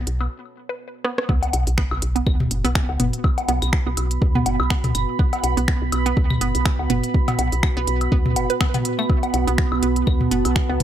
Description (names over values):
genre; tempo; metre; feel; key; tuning
minimal techno; 123 BPM; 4/4; swing 56% on 16ths; B minor; A4 = 440 Hz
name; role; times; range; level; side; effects
woody FM bass; bass; 0.0-10.8 s; F#1 to D2; -23 LUFS; equal; sidechain pumping
deep dark ambient pad; texture; 2.4-10.8 s; B3 to B5; -25 LUFS; right 5 dB; chorus, built-in reverb, sidechain pumping
techno drum kit; drums; 0.1-10.8 s; finger snaps, hi-hat, rim click; -26 LUFS; equal; overdrive
hollow square pluck; riff; 0.2-10.7 s; A3 to B4; -28 LUFS; right 3 dB; chorus, phaser, sidechain pumping, tape echo
electronic woodblock, claves and toms; percussion; 0.2-10.8 s; none; -25 LUFS; left 3 dB; none
electronic kick drum; drums; 1.3-10.7 s; none; -20 LUFS; equal; none
sub drop; sound effects; 1.3-3.2 s; none; -30 LUFS; equal; none
room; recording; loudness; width
digital ambience; none; -18 LUFS; side -10 dB against mid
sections
0.0-1.3 A section; 1.3-10.8 B section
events
break 0.3-1.3; drum fill 1.0; drop 1.3-10.8; impact 1.3-3.2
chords
0.0 B5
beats
0.31 0.80 | 1.29 1.78 2.27 2.75 | 3.24 3.73 4.22 4.70 | 5.19 5.68 6.17 6.66 | 7.14 7.63 8.12 8.61 | 9.10 9.58 10.07 10.56